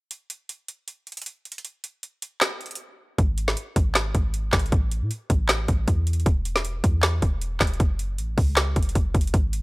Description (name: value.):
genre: hip hop, trap.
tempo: 156 BPM.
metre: 4/4.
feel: half-time.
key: unclear.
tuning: A4 = 440 Hz.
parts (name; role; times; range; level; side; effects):
trap drum kit; drums; 0.1-9.6 s; handclaps, hi-hat, kick drum, snare drum; -22 LUFS; equal; none.
warm 808-style bass; bass; 3.2-9.6 s; E1 to A2; -25 LUFS; equal; none.
room: little or no reverb.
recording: dry, gritty hardware recording.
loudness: -21 LUFS.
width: side -24 dB against mid.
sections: 0.1-3.2 A section; 3.2-9.6 B section.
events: break 2.8-3.2.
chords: none.